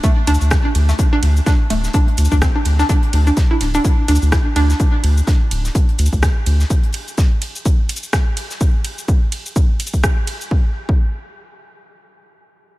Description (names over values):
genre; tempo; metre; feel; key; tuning
minimal techno; 126 BPM; 4/4; swing 58% on 16ths; unclear; A4 = 440 Hz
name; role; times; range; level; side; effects
hollow square pluck; riff; 0.0-4.7 s; A3 to E4; -21 LUFS; right 1 dB; lush chorus, cassette tape, sidechain pumping, diffuse ambient delay
damped 70s drum kit; drums; 0.0-8.6 s; hi-hat, snare drum; -35 LUFS; left 2 dB; high-pass filter on hats, studio reverb, high-pass filter on snare, high-pass filter on room
electronic kick drum; drums; 0.0-11.0 s; none; -15 LUFS; equal; studio reverb
house drum kit; drums; 0.0-10.5 s; hi-hat, ride cymbal, rim click, shaker; -26 LUFS; equal; studio reverb
round analog bass; bass; 0.3-6.6 s; D1 to D2; -14 LUFS; equal; tube saturation, sidechain pumping
room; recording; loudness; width
light reverb; none; -14 LUFS; side -18 dB against mid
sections
0.0-10.5 A section; 10.5-12.8 B section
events
drop 0.0-10.5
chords
0.0 D5; 10.5 N.C.